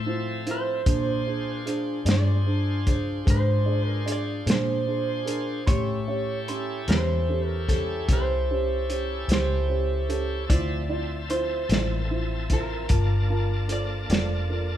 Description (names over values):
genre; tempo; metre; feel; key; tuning
slow blues; 50 BPM (dotted quarters); 12/8; straight; D minor; A4 = 440 Hz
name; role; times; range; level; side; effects
bright tonewheel organ; sustained chords; 0.0-14.8 s; F3 to A5; -36 LUFS; equal; slow rotary speaker, overdrive
vintage muted fingered electric bass; bass; 0.0-14.8 s; F1 to Bb2; -27 LUFS; left 1 dB; none
dark upright piano; accompaniment; 0.1-14.8 s; C#4 to B#5; -30 LUFS; right 2 dB; none
electric guitar through a small old amp; melody; 0.5-14.8 s; A4 to D5; -31 LUFS; right 2 dB; slapback echo
warm soul drum kit; drums; 0.5-14.3 s; hi-hat, kick drum, snare drum; -24 LUFS; equal; none
room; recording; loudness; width
moderate large studio reverb, RT60 1.3 s; band playing live in one room; -23 LUFS; side -11 dB against mid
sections
0.0-14.8 A section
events
none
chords
0.0 Dm7 (rootless); 0.9 Bb7; 5.7 A7#9; 10.5 Dm7; 12.9 Gm7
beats
| 0.86 2.07 3.27 4.47 | 5.68 6.88 8.09 9.29 | 10.50 11.70 12.90 14.11